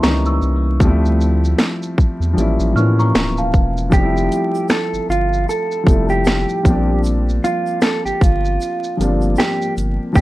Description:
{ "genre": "lo-fi hip hop", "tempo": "77 BPM", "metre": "4/4", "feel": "swing 58% on 16ths", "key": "unclear", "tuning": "A4 = 440 Hz", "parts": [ { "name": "worn celesta", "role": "second line", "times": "0.0-3.9 s", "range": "F5 to F6", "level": "-24 LUFS", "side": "equal", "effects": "low-pass filter, analog delay" }, { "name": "dark upright piano", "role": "accompaniment", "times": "0.0-10.2 s", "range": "Eb3 to E4", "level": "-20 LUFS", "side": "left 1 dB", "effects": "low-pass filter" }, { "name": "saturated sub bass", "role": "bass", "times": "0.0-10.2 s", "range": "D1 to A2", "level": "-18 LUFS", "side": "equal", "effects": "none" }, { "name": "garage drum kit", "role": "drums", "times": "0.0-10.2 s", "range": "finger snaps, hi-hat, kick drum, shaker, snare drum", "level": "-16 LUFS", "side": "equal", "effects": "none" }, { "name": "mellow electric guitar", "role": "melody", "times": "3.9-10.2 s", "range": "F4 to A4", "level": "-20 LUFS", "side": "right 2 dB", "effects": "low-pass filter, plate reverb" }, { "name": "tube shaker", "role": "percussion", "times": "3.9-10.2 s", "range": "none", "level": "-43 LUFS", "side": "right 5 dB", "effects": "none" } ], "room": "light reverb", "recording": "vinyl crackle", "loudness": "-14 LUFS", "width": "side -17 dB against mid", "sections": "0.0-3.9 A section; 3.9-10.2 B section", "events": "none", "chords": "0.0 C#dim7; 0.8 Dm11; 2.4 A7b9b13; 3.9 Fmaj9; 6.7 Bb6", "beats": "0.03 | 0.81 1.59 2.37 3.14 | 3.92 4.70 5.48 6.26 | 7.04 7.82 8.60 9.38 | 10.16" }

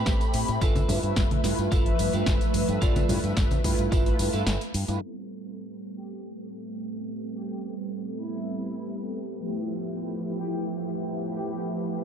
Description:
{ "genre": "nu-disco, nu disco", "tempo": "109 BPM", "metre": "4/4", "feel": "straight", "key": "A minor", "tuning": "A4 = 440 Hz", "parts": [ { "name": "mellow synth brass", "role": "accompaniment", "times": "0.0-12.0 s", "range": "F3 to B5", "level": "-30 LUFS", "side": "right 1 dB", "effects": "chorus, phaser, sidechain pumping, dub echo" }, { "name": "clean electric guitar", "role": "riff", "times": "0.0-4.9 s", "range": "C4 to D5", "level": "-34 LUFS", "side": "right 4 dB", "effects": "analog chorus, dub echo" }, { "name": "fingered electric bass with an envelope filter", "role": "bass", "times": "0.1-5.0 s", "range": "G1 to A2", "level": "-28 LUFS", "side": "equal", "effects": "none" }, { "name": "electronic kick drum", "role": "drums", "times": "0.1-4.0 s", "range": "none", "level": "-25 LUFS", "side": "equal", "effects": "none" }, { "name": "house drum kit", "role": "drums", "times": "0.1-12.0 s", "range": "hi-hat, shaker, snare drum", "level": "-32 LUFS", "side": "equal", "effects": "low-pass filter on hats, low-pass filter on snare, low-pass filter on perc" }, { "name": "tambourine and congas", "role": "percussion", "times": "0.1-5.0 s", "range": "none", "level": "-34 LUFS", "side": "left 1 dB", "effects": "none" }, { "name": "string machine, full ensemble", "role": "sustained chords", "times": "5.0-12.0 s", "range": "F3 to B4", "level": "-35 LUFS", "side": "right 1 dB", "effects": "ensemble chorus, sidechain pumping" }, { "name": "rich chamber violin section", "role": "melody", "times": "6.0-11.6 s", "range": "E4 to G4", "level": "-42 LUFS", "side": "left 3 dB", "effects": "ping-pong delay" } ], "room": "light reverb", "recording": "dark, warm production, low-pass filter", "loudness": "-24 LUFS", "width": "side -8 dB against mid", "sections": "0.0-5.0 A section; 5.0-12.0 B section", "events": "break 4.5-5.0; filter sweep on analog polysynth 5.0-12.0; filter sweep 5.0-12.0", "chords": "0.0 Am9; 0.6 G13; 5.0 Am9; 9.4 G13", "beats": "0.06 | 0.61 1.17 1.72 2.27 | 2.82 3.37 3.92 4.47 | 5.02 5.57 6.12 6.67 | 7.22 7.77 8.32 8.87 | 9.42 9.97 10.52 11.07 | 11.62" }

